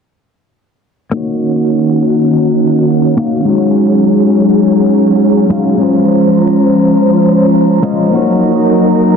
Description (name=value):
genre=sunset chillout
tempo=103 BPM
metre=4/4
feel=swing 57% on 16ths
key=Eb dorian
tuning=A4 = 437 Hz
part: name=clean electric guitar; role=accompaniment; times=1.1-9.2 s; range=Ab3 to F5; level=-10 LUFS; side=moving between left 4 dB and right 3 dB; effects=auto-pan, low-pass filter, ping-pong delay
part: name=soft string machine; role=sustained chords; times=1.1-9.2 s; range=Eb3 to C5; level=-12 LUFS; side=equal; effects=ensemble chorus
part: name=shaker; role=drums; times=1.1-9.1 s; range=none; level=-48 LUFS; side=left 2 dB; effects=none
part: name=drifting glass-harmonics texture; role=texture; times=1.9-9.2 s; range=Bb5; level=-27 LUFS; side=right 2 dB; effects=chorus, built-in reverb
room=wet recital hall reverb, RT60 1.3 s, studio reverb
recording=dense, heavily limited modern master, low-pass filter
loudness=-8 LUFS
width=side -6 dB against mid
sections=1.1-9.2 A section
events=filter sweep on clean electric guitar 1.1-9.2; filter sweep 1.1-9.2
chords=1.1 Ebm7; 3.5 Ab7sus4; 5.8 Dbmaj7; 8.1 Gb6